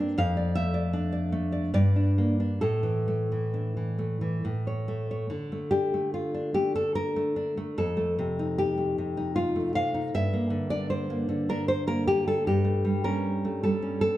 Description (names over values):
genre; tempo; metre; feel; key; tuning
romantic piece for solo classical guitar; 65-80 BPM; 3/4; rubato; D minor; A4 = 440 Hz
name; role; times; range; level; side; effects
nylon-string guitar; solo; 0.0-14.2 s; F2 to F5; -25 LUFS; equal; none
room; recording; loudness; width
moderate recital hall reverb, RT60 1.5 s; dark, warm production; -25 LUFS; side -14 dB against mid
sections
0.0-5.3 A section; 5.3-14.2 B section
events
none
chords
0.2 Dm/F; 1.7 Gm; 2.6 Asus4; 4.4 A; 5.3 D5; 7.8 F7; 10.1 Gm; 12.5 A7/G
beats
| 0.17 0.93 1.73 | 2.61 3.53 4.43 | 5.29 6.12 6.95 | 7.77 8.57 9.37 | 10.14 10.91 11.69 | 12.45 13.24 14.04